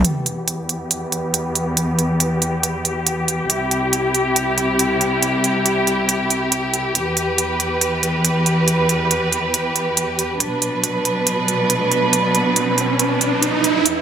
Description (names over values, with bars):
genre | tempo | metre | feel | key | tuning
heavy wobble dubstep | 139 BPM | 4/4 | swing 54% on 16ths, half-time | E minor | A4 = 438 Hz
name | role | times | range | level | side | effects
warm symphonic string section | sustained chords | 0.0-14.0 s | C2 to B4 | -18 LUFS | equal | low-pass filter
electronic hi-hat | drums | 0.0-13.9 s | none | -18 LUFS | right 3 dB | none
riser | sound effects | 11.2-14.0 s | none | -21 LUFS | right 3 dB | none
room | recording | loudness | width
moderate lush hall reverb, RT60 2.1 s | none | -16 LUFS | side -8 dB against mid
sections
0.0-13.9 A section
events
filter sweep on string section 0.0-13.9; riser 11.2-13.9, 13.9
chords
0.0 Em; 3.5 C; 7.0 Em; 10.4 Bm